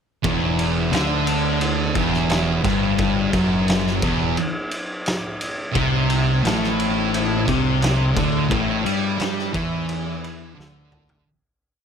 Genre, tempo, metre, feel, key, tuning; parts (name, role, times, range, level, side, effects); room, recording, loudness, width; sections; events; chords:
stoner and doom metal; 87 BPM; 4/4; straight; E minor; A4 = 440 Hz
fuzz guitar; riff; 0.2-11.2 s; E2 to G3; -26 LUFS; equal; distortion
thick fuzz guitar; riff; 0.2-11.2 s; E2 to G3; -24 LUFS; left 9 dB; distortion
thick fuzz guitar; riff; 0.2-11.2 s; E2 to G3; -24 LUFS; right 9 dB; distortion
growling picked electric bass; bass; 0.2-11.2 s; E1 to G2; -27 LUFS; equal; overdrive
oversized low-tuned drum kit; drums; 0.2-11.2 s; kick drum, ride cymbal, snare drum, toms; -25 LUFS; equal
studio ambience; -18 LUFS; side -7 dB against mid
0.2-11.3 riff
fade-out 8.5-11.3; drum fill 10.6-11.3
0.2 Em; 5.7 C5